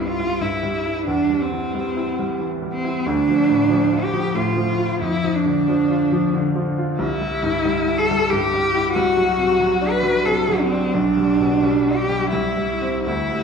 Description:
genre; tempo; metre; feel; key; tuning
classical, romantic duo for cello and grand piano; 91 BPM; 3/4; rubato; unclear; A4 = 439 Hz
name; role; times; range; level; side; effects
rich cello; melody; 0.0-13.4 s; C4 to B4; -20 LUFS; right 1 dB; none
bright grand piano; accompaniment; 0.0-13.4 s; B1 to F4; -21 LUFS; equal; none
room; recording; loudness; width
wet recital hall reverb, RT60 1.5 s; heard from further back in the room; -17 LUFS; side -6 dB against mid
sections
0.0-13.4 A section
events
none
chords
0.0 C; 1.1 C/E; 3.1 Dm; 5.0 Dm/F; 7.0 C; 9.0 D7/C; 10.9 G/B; 12.3 C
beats
0.42 | 1.08 1.75 2.42 | 3.06 3.71 4.36 | 5.02 5.68 6.34 | 7.00 7.65 8.32 | 8.96 9.60 10.26 | 10.94 11.63 12.33 | 13.06

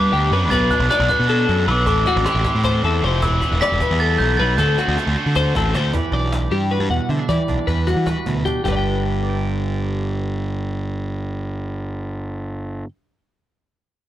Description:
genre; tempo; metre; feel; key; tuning
math rock and midwest emo; 310 BPM (eighths); 7/8; straight; G major; A4 = 436 Hz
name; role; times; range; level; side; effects
glockenspiel with rubber mallets; melody; 0.0-5.1 s; C6 to B6; -22 LUFS; right 2 dB; digital delay
twelve-string electric guitar; arpeggios; 0.0-12.9 s; F#4 to G5; -23 LUFS; left 7 dB; lush chorus, digital delay
cranked stack guitar; riff; 0.0-5.9 s; A2 to F#4; -25 LUFS; right 2 dB; overdrive
fuzz picked electric bass; bass; 0.0-12.8 s; E1 to E3; -20 LUFS; equal; overdrive
cajon; drums; 0.1-8.7 s; none; -28 LUFS; equal; none
twangy electric guitar; accompaniment; 5.9-12.9 s; G2 to G5; -27 LUFS; right 8 dB; wide subtle chorus
room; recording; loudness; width
little or no reverb; dark, warm production; -17 LUFS; side -12 dB against mid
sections
0.0-5.9 A section; 5.9-8.7 B section; 8.7-11.4 C section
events
drum fill 4.8-5.9, 7.5-8.7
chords
0.0 Gmaj7; 0.5 Bm7; 1.9 Am7; 3.2 Em7; 4.6 D7sus4; 5.9 Em9; 8.7 G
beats
0.13 0.32 | 0.51 0.71 0.90 1.09 1.29 1.48 1.68 | 1.87 2.06 2.26 2.45 2.64 2.84 3.03 | 3.22 3.42 3.61 3.80 4.00 4.19 4.38 | 4.58 4.77 4.96 5.16 5.35 5.55 5.74 | 5.93 6.13 6.32 6.51 6.71 6.90 7.10 | 7.29 7.49 7.68 7.87 8.07 8.26 8.46 | 8.65 8.85 9.04 9.23 9.43 9.62 9.82 | 10.01 10.21 10.40 10.59 10.79 10.98 11.18

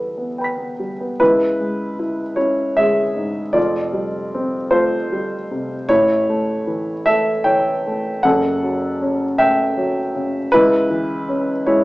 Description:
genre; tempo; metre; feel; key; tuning
neoclassical minimalist piano; 51 BPM (dotted quarters); 6/8; rubato; unclear; A4 = 438 Hz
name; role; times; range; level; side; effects
dark grand piano; solo; 0.0-11.8 s; F1 to B6; -16 LUFS; equal; none
room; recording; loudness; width
moderate large studio reverb, RT60 0.9 s; band playing live in one room, small speaker sound; -16 LUFS; side -19 dB against mid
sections
0.0-1.2 A section; 1.2-11.8 B section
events
none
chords
0.0 Em; 1.2 C#m; 3.6 Fadd9; 5.9 A; 8.2 F#m; 10.5 C#m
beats
| 1.20 2.38 | 3.56 4.73 | 5.90 7.07 | 8.24 9.38 | 10.51 11.65

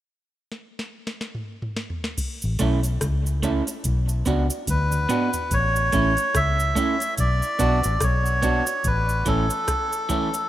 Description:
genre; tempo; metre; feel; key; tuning
roots reggae; 72 BPM; 4/4; swing 58% on 16ths; A major; A4 = 441 Hz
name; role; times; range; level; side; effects
soft vintage rhythm box; drums; 0.5-10.5 s; crash cymbal, hi-hat, kick drum, rim click, snare drum, toms; -30 LUFS; left 1 dB; none
cabasa; percussion; 2.2-10.5 s; none; -33 LUFS; right 2 dB; none
vintage muted fingered electric bass; bass; 2.4-9.5 s; A1 to D2; -23 LUFS; left 1 dB; none
electric guitar through a small old amp; accompaniment; 2.6-10.4 s; E3 to F#4; -26 LUFS; right 3 dB; dub echo
melodica; melody; 4.7-10.5 s; A4 to E5; -23 LUFS; equal; dub echo
room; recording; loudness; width
moderate plate reverb, RT60 3.2 s; rough home demo mix; -20 LUFS; side -13 dB against mid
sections
0.0-2.2 A section; 2.2-5.5 B section; 5.5-10.5 C section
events
drum fill 0.5-2.2, 4.7-5.5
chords
0.0 N.C.; 2.2 A; 3.8 Bm; 5.5 A; 7.2 Bm; 8.8 A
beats
0.51 1.35 | 2.18 3.01 3.85 4.68 | 5.51 6.34 7.18 8.01 | 8.84 9.68

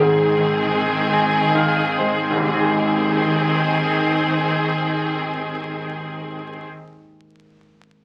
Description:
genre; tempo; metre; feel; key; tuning
children's music, lullaby; 62-87 BPM; 3/4; rubato; Ab major; A4 = 442 Hz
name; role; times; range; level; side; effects
felt-muted upright piano; melody; 0.0-1.1 s; Ab4; -22 LUFS; equal; none
concert harp; accompaniment; 0.0-6.8 s; Ab1 to Ab5; -24 LUFS; equal; none
clear symphonic string section; sustained chords; 0.0-6.7 s; Eb3 to Ab4; -23 LUFS; equal; none
room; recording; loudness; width
wet small room reverb, RT60 0.5 s; very old 78 rpm record, vinyl crackle; -20 LUFS; mono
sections
0.0-2.4 A section; 2.4-8.0 B section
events
slowing down 0.0-2.4; harp fill 0.7-2.4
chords
0.0 Ab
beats
| 0.00 0.72 1.52 | 2.43 3.39 4.35 | 5.29 6.22

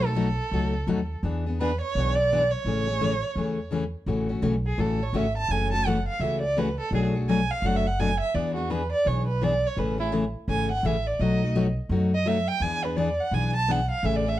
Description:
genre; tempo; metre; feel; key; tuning
acoustic string swing (jazz manouche); 169 BPM; 4/4; swing 61% on 8ths; A major; A4 = 440 Hz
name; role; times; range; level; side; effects
warm violin; melody; 0.0-14.4 s; E4 to A5; -27 LUFS; right 3 dB; none
picked steel-string acoustic guitar; accompaniment; 0.0-14.4 s; B2 to G#4; -27 LUFS; left 3 dB; none
upright bass; bass; 0.0-14.4 s; F#1 to F#2; -28 LUFS; right 1 dB; none
room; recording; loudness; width
moderate studio reverb, RT60 0.6 s; dark, warm production; -23 LUFS; side -14 dB against mid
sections
0.0-4.1 A section; 4.1-14.4 B section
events
violin solo 4.1-14.4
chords
0.0 B7; 1.2 E7; 2.7 Amaj7; 4.1 A6; 5.5 F#m7; 6.9 Bm7; 8.3 E7; 9.8 Amaj7; 11.2 B7; 12.6 E7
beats
0.16 0.52 0.87 | 1.23 1.59 1.94 2.30 | 2.65 3.01 3.37 3.72 | 4.08 4.43 4.79 5.14 | 5.50 5.86 6.21 6.57 | 6.92 7.28 7.63 7.99 | 8.34 8.70 9.06 9.41 | 9.77 10.12 10.48 10.83 | 11.19 11.54 11.90 12.25 | 12.61 12.96 13.32 13.68 | 14.03 14.38

